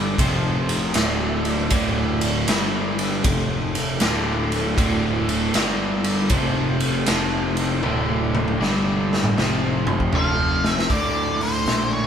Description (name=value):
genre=blues rock power trio and southern rock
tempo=78 BPM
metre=4/4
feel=swing 66% on 8ths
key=D minor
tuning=A4 = 440 Hz
part: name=crunchy overdriven guitar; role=riff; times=0.0-12.1 s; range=D2 to G3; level=-23 LUFS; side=equal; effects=none
part: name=fuzz picked electric bass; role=bass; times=0.0-12.1 s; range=D1 to D2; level=-26 LUFS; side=equal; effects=overdrive
part: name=raw garage drum kit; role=drums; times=0.2-11.9 s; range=hi-hat, kick drum, ride cymbal, snare drum, toms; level=-23 LUFS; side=equal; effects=none
part: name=octave-fuzz lead guitar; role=melody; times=10.2-12.1 s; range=C5 to F5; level=-23 LUFS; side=equal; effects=distortion
room=moderate stone room reverb, RT60 1.0 s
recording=band playing live in one room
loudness=-19 LUFS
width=side -8 dB against mid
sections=0.0-10.9 A section; 10.9-12.1 B section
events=drum fill 7.8-10.9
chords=0.2 F5; 1.0 D5; 2.5 G5; 3.3 F5; 4.0 D5; 5.6 G5; 6.3 F5; 7.8 D5; 8.6 G5; 9.4 F5; 10.9 D5